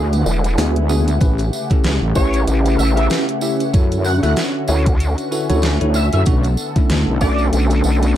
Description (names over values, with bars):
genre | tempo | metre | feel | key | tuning
glitch hop | 95 BPM | 4/4 | swing 57% on 16ths | unclear | A4 = 442 Hz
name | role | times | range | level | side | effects
sync lead | melody | 0.0-7.5 s | G#4 to F#5 | -26 LUFS | left 1 dB | ensemble chorus, ping-pong delay
warm analog pad | sustained chords | 0.0-8.2 s | C#3 to A4 | -26 LUFS | left 1 dB | chorus, sidechain pumping
wobble bass | bass | 0.0-7.2 s | A1 to F#2 | -17 LUFS | equal | chorus
ethereal airy pad | texture | 0.0-8.2 s | C#4 to A5 | -26 LUFS | equal | ensemble chorus, built-in reverb, sidechain pumping
pop drum kit | drums | 0.1-8.1 s | hi-hat, snare drum | -24 LUFS | equal | overdrive
tambourine | percussion | 0.1-8.1 s | none | -32 LUFS | right 4 dB | none
vowel-sweep wobble bass | bass | 0.3-8.1 s | E1 to D2 | -17 LUFS | equal | chorus
bell-like tine electric piano | stabs | 0.6-8.2 s | A3 to E5 | -22 LUFS | left 1 dB | fast stereo tremolo, sidechain pumping, ping-pong delay
electronic kick drum | drums | 1.2-7.4 s | none | -16 LUFS | equal | overdrive
room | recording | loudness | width
light reverb | dark, warm production | -14 LUFS | side -12 dB against mid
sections
0.0-8.2 A section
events
none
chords
0.0 E7; 1.2 A7; 3.7 Dmaj7; 6.3 Bm7